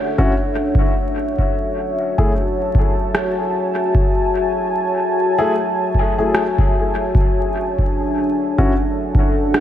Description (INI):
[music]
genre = ambient dub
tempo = 75 BPM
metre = 4/4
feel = swing 59% on 16ths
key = F# minor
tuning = A4 = 440 Hz
[part]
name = deep dark ambient pad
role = sustained chords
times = 0.0-9.6 s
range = D4 to A5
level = -19 LUFS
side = equal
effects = chorus, built-in reverb
[part]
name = dark upright piano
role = stabs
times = 0.2-8.7 s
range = A3 to G#4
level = -23 LUFS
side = left 2 dB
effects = dub echo
[part]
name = electronic kick drum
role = drums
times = 0.2-9.3 s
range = none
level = -18 LUFS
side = equal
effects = none
[part]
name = electronic rim click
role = drums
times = 3.1-9.6 s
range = none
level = -25 LUFS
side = equal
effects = dub echo
[sound]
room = light reverb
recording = vinyl crackle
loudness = -16 LUFS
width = side -11 dB against mid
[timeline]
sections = 0.0-9.6 A section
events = none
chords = 0.0 Dmaj9; 0.7 F#m9; 7.1 Dmaj9